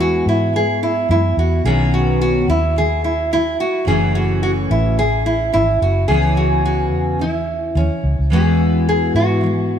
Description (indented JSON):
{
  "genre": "pop",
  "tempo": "108 BPM",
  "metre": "4/4",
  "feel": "swing 55% on 16ths",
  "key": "E major",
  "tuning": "A4 = 441 Hz",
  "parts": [
    { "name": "nylon-string guitar", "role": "melody", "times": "0.0-9.8 s", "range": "C#4 to G#4", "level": "-18 LUFS", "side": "right 1 dB", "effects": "none" },
    { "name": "picked steel-string acoustic guitar", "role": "accompaniment", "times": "0.0-9.8 s", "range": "F#2 to G#4", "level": "-20 LUFS", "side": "left 1 dB", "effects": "double-tracked left and right" },
    { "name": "vintage muted fingered electric bass", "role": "bass", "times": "0.0-9.8 s", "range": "F#1 to G#2", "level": "-19 LUFS", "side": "equal", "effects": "none" }
  ],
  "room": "light reverb, small room ambience",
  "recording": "1960s-style stereo",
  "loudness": "-14 LUFS",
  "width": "side -8 dB against mid",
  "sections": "0.0-9.8 A section",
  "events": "none",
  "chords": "0.0 Eadd9; 1.6 Badd9; 3.9 F#m7; 6.1 C#m7; 8.3 Eadd9",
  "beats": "0.54 1.09 | 1.65 2.21 2.76 3.32 | 3.87 4.43 4.98 5.54 | 6.09 6.65 7.20 7.76 | 8.31 8.87 9.42"
}